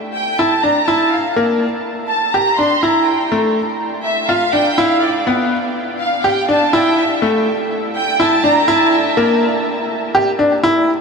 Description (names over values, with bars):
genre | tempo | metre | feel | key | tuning
piano and strings electronica | 123 BPM | 4/4 | straight | unclear | A4 = 440 Hz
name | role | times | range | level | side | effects
dark studio violin section | melody | 0.2-9.2 s | D5 to C6 | -17 LUFS | right 2 dB | none
bright upright piano | riff | 0.4-10.9 s | A3 to G4 | -15 LUFS | left 1 dB | none
room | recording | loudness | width
wet huge ambient reverb, RT60 8.1 s | none | -13 LUFS | side -4 dB against mid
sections
0.0-11.0 A section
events
build-up 0.0-11.0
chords
0.0 A5; 1.4 Gm; 3.3 Dmadd9; 5.3 Em7; 7.2 A5; 9.2 Gm